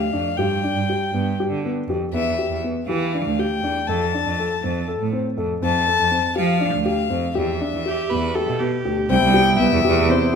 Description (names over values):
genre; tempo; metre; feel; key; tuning
contemporary instrumental, chamber music in an uneven meter; 241 BPM (eighths); 7/8; straight; E phrygian; A4 = 438 Hz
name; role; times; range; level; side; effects
warm violin; melody; 0.0-10.3 s; C5 to A5; -23 LUFS; left 5 dB; none
dark grand piano; arpeggios; 0.0-10.2 s; B3 to A4; -24 LUFS; left 3 dB; none
clear cello; bass; 0.0-10.0 s; C2 to F3; -23 LUFS; right 5 dB; none
clear viola; second line; 7.9-9.1 s; G4 to B4; -26 LUFS; right 3 dB; none
hand-pumped harmonium; sustained chords; 9.1-10.4 s; C3 to E4; -24 LUFS; right 4 dB; none
crotales; texture; 9.4-10.4 s; D7; -29 LUFS; equal; none
room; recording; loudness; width
wet recital hall reverb, RT60 1.6 s; minimal, uncompressed stereo recording; -18 LUFS; side -6 dB against mid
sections
0.0-9.1 A section; 9.1-10.4 B section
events
none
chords
0.4 G; 2.1 Em7; 3.9 Dm7/F (rootless); 5.6 F69; 7.4 Em7; 9.1 Cmaj7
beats
0.13 | 0.38 0.63 0.88 1.13 1.38 1.63 1.88 | 2.13 2.38 2.62 2.88 3.12 3.37 3.62 | 3.87 4.12 4.37 4.62 4.87 5.12 5.37 | 5.62 5.87 6.12 6.37 6.62 6.87 7.11 | 7.36 7.61 7.86 8.11 8.36 8.61 8.86 | 9.11 9.35 9.60 9.85 10.10 10.35